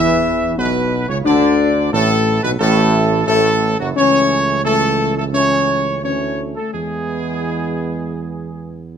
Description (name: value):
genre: classical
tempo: 87 BPM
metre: 4/4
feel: straight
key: A major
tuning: A4 = 440 Hz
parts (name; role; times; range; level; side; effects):
- mellow trumpet section; melody; 0.0-8.8 s; F#4 to E5; -18 LUFS; right 2 dB; none
- dark French horn section; sustained chords; 0.0-8.8 s; F#3 to E4; -20 LUFS; left 8 dB; none
- dark trombone section; sustained chords; 0.0-9.0 s; F#2 to B3; -24 LUFS; right 4 dB; none
- dark tuba; bass; 0.0-9.0 s; F#1 to E2; -21 LUFS; right 4 dB; none
room: moderate recital hall reverb, RT60 1.7 s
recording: close, detailed microphones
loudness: -14 LUFS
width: side -8 dB against mid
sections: 0.0-9.0 A section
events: none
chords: 0.0 Bsus24; 1.3 D; 4.0 A/C#; 6.7 E